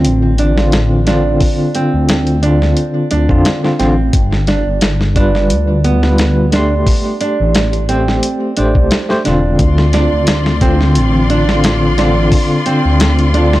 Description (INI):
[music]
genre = trip hop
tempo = 88 BPM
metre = 4/4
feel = swing 54% on 16ths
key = D dorian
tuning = A4 = 440 Hz
[part]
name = bell-like tine electric piano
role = accompaniment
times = 0.0-13.6 s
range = D3 to C6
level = -16 LUFS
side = left 1 dB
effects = tremolo, tape echo
[part]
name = nylon-string guitar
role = arpeggios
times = 0.0-13.5 s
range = B3 to D4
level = -18 LUFS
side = right 4 dB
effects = tape echo
[part]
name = dark detuned saw bass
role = bass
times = 0.0-13.6 s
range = E1 to F2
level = -14 LUFS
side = left 1 dB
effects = none
[part]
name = dusty soul sampler-style drum kit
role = drums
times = 0.0-13.6 s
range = hi-hat, kick drum, snare drum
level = -16 LUFS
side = equal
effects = vintage 12-bit sampler grit
[part]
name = clear studio string section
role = sustained chords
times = 9.6-13.6 s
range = F4 to C6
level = -20 LUFS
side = left 2 dB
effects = none
[sound]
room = little or no reverb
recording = dry, gritty hardware recording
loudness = -10 LUFS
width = side -16 dB against mid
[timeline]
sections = 0.0-13.6 A section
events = none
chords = 0.0 Dm7; 4.1 G7; 6.9 Am7; 9.6 Dm7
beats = 0.05 0.73 | 1.41 2.09 2.77 3.46 | 4.14 4.82 5.50 6.18 | 6.87 7.55 8.23 8.91 | 9.59 10.27 10.96 11.64 | 12.32 13.00